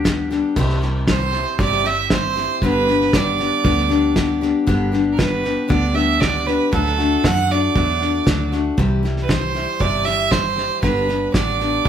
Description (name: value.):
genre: honky-tonk and classic country.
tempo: 117 BPM.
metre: 4/4.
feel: straight.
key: G major.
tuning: A4 = 439 Hz.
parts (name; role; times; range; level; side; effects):
picked steel-string acoustic guitar; accompaniment; 0.0-11.9 s; G2 to G4; -21 LUFS; left 4 dB; none.
vintage muted fingered electric bass; bass; 0.0-11.9 s; G1 to F#2; -24 LUFS; right 1 dB; none.
cloth-damped thuddy drum kit; drums; 0.1-11.9 s; crash cymbal, hi-hat, kick drum, snare drum; -21 LUFS; equal; none.
bright fiddle; second line; 1.1-11.9 s; A4 to F#5; -20 LUFS; right 6 dB; none.
room: wet studio reverb, RT60 0.7 s.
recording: band playing live in one room.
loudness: -16 LUFS.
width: side -9 dB against mid.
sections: 0.6-11.9 A section.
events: fiddle solo 0.6-11.9.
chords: 0.0 G; 0.6 C; 2.6 G; 6.7 D; 8.8 C; 10.8 G.